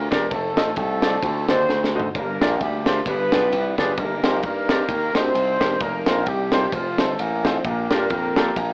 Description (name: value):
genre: uptempo gospel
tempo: 131 BPM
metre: 4/4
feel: swing 56% on 8ths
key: unclear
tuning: A4 = 440 Hz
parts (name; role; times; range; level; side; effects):
- mellow horn section; melody; 0.0-8.7 s; F3 to C5; -24 LUFS; equal; none
- slap bass with an envelope filter; bass; 0.0-8.7 s; E1 to G2; -26 LUFS; equal; transformer saturation
- clear grand piano; accompaniment; 0.1-8.7 s; G2 to Bb5; -24 LUFS; equal; none
- crisp fusion drum kit; drums; 0.1-8.7 s; kick drum, ride cymbal, snare drum, toms; -24 LUFS; equal; none
room: light reverb, small room ambience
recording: worn, warbling old tape, cassette tape, warbly pitch drift, AM radio sound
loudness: -18 LUFS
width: side -30 dB against mid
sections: 0.0-8.7 A section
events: drum fill 1.7-2.1; grand piano fill 8.1-8.7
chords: 0.3 F7; 1.2 D7b9; 2.1 Gm7; 3.1 G7b9; 4.0 Cm7/G; 5.8 F7sus4; 6.7 F7; 7.6 Bb6